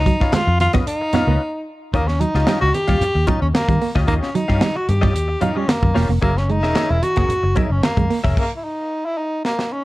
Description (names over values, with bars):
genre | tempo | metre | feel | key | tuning
funk | 112 BPM | 4/4 | straight | Eb mixolydian | A4 = 442 Hz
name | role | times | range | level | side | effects
breathy tenor saxophone | melody | 0.0-9.8 s | Bb3 to G4 | -21 LUFS | equal | none
vintage muted fingered electric bass | bass | 0.0-8.3 s | Fb1 to Eb3 | -19 LUFS | equal | none
direct-recorded clean electric guitar | accompaniment | 0.1-8.4 s | Db4 to Gb5 | -26 LUFS | left 3 dB | ensemble chorus
semi-hollow electric guitar | riff | 0.1-8.2 s | Eb3 to Cb4 | -24 LUFS | right 5 dB | none
tight funk drum kit | drums | 0.1-9.7 s | crash cymbal, hi-hat, kick drum, snare drum | -21 LUFS | equal | none
congas | percussion | 0.1-8.1 s | none | -26 LUFS | right 2 dB | none
group handclap | percussion | 0.3-0.5, 6.8-8.0 s | none | -33 LUFS | left 4 dB | none
room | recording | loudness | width
light reverb | cassette tape | -16 LUFS | side -18 dB against mid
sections
0.0-1.9 A section; 1.9-9.8 B section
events
break 1.4-1.9; stop 8.4-9.8; drum fill 9.4-9.8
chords
0.0 Db9; 1.9 Eb9; 6.2 Gb9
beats
0.33 0.87 1.40 | 1.94 2.47 3.01 3.54 | 4.08 4.62 5.15 5.69 | 6.22 6.76 7.30 7.84 | 8.37 8.91 9.45